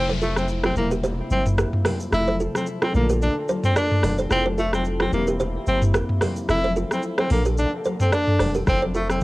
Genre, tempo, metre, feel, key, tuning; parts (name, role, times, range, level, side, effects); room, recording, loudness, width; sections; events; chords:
afrobeats; 110 BPM; 4/4; swing 55% on 16ths; F major; A4 = 441 Hz
breathy tenor saxophone; melody; 0.0-9.2 s; A3 to E4; -25 LUFS; equal; tape echo
crystalline FM electric piano; accompaniment; 0.0-9.2 s; C3 to A4; -31 LUFS; left 1 dB; chorus, cassette tape
mellow French horn section; sustained chords; 0.0-9.2 s; Bb2 to A4; -33 LUFS; left 1 dB; sidechain pumping, cassette tape
punchy sub bass; bass; 0.0-9.2 s; E1 to Bb1; -25 LUFS; equal
kalimba; riff; 0.1-9.0 s; F4 to D5; -28 LUFS; right 2 dB; cassette tape, tape echo
congas; percussion; 0.1-9.2 s; -31 LUFS; left 2 dB
afro-pop drum kit; drums; 0.2-9.2 s; hi-hat, kick drum, rim click, shaker, toms; -23 LUFS; equal; overdrive, vintage 12-bit sampler grit, cassette tape
light reverb; home recording on cassette; -19 LUFS; side -20 dB against mid
0.0-9.2 A section
break 0.0-8.7; kick muted 7.6-8.7
0.0 Fmaj7; 0.8 C7/E; 2.1 Fmaj7; 2.9 Bbmaj7; 4.3 Fmaj7; 5.1 C7/E; 6.5 Fmaj7; 7.3 Bbmaj7; 8.7 Fmaj7